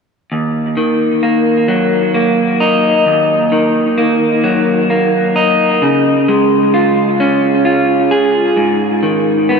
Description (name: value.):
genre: rock.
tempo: 44 BPM (dotted quarters).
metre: 6/8.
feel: straight.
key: Eb minor.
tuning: A4 = 440 Hz.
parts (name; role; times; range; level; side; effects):
electric guitar through a small old amp; arpeggios; 0.3-9.6 s; Eb2 to Ab4; -10 LUFS; equal; tape echo.
room: wet huge ambient reverb, RT60 4.7 s.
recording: dreamy mix soaked in reverb.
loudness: -10 LUFS.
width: side -5 dB against mid.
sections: 0.3-9.6 A section.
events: none.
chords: 0.3 Ebm; 5.8 Db; 8.6 Ab5.